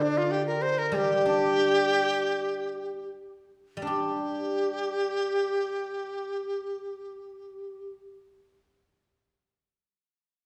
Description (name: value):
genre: chinese traditional, Chinese chamber ensemble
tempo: 71-99 BPM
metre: 4/4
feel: rubato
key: unclear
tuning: A4 = 441 Hz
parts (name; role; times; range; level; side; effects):
- bright large dizi; melody; 0.0-7.9 s; D4 to C5; -30 LUFS; equal; none
- guzheng; accompaniment; 0.0-9.8 s; D3 to G4; -32 LUFS; equal; none
room: wet recital hall reverb, RT60 1.7 s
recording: heard from further back in the room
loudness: -28 LUFS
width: mono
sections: 0.0-3.9 A section; 3.9-7.2 B section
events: slowing down 0.0-3.9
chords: none